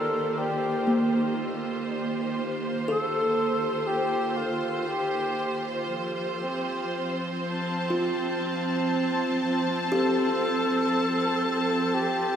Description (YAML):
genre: ambient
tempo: 60 BPM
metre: 4/4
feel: straight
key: unclear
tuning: A4 = 440 Hz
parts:
  - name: bright reedy alto flute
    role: melody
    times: 0.0-12.4 s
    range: F4 to A4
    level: -29 LUFS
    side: left 1 dB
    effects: diffuse ambient delay
  - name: rich symphonic string section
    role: sustained chords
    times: 0.0-12.4 s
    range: Eb3 to A5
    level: -27 LUFS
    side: right 1 dB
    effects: none
  - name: kalimba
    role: arpeggios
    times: 0.0-12.4 s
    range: Bb3 to D5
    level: -31 LUFS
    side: equal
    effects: diffuse ambient delay
room: wet cathedral reverb, RT60 4.9 s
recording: in a vast, echoing space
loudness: -24 LUFS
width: side -8 dB against mid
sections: 0.0-12.4 A section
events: none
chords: 0.0 Ebmaj7; 5.9 Fadd9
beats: 0.88 | 1.89 2.90 3.91 4.91 | 5.91 6.91 7.91 8.92 | 9.92 10.93 11.95